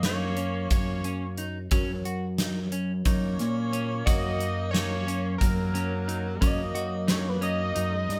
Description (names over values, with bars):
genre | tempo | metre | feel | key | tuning
progressive instrumental, band music in an uneven meter | 179 BPM (eighths) | 7/8 | straight | unclear | A4 = 440 Hz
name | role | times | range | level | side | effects
fat analog lead | melody | 0.0-8.2 s | A#4 to D#5 | -35 LUFS | equal | none
breathy alto saxophone | second line | 0.0-8.2 s | F#3 to A#3 | -39 LUFS | equal | none
tine electric piano | accompaniment | 0.0-8.2 s | F#3 to C#5 | -42 LUFS | equal | none
clean electric guitar | arpeggios | 0.0-8.1 s | C#4 to F#4 | -38 LUFS | equal | none
fat analog bass | bass | 0.0-8.2 s | F#2 to A#2 | -32 LUFS | equal | none
gated 80s drum kit | drums | 0.0-8.2 s | hi-hat, kick drum, snare drum | -29 LUFS | equal | none
room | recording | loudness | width
moderate studio reverb, RT60 0.6 s | band playing live in one room | -27 LUFS | mono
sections
0.0-8.2 A section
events
none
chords
0.0 F#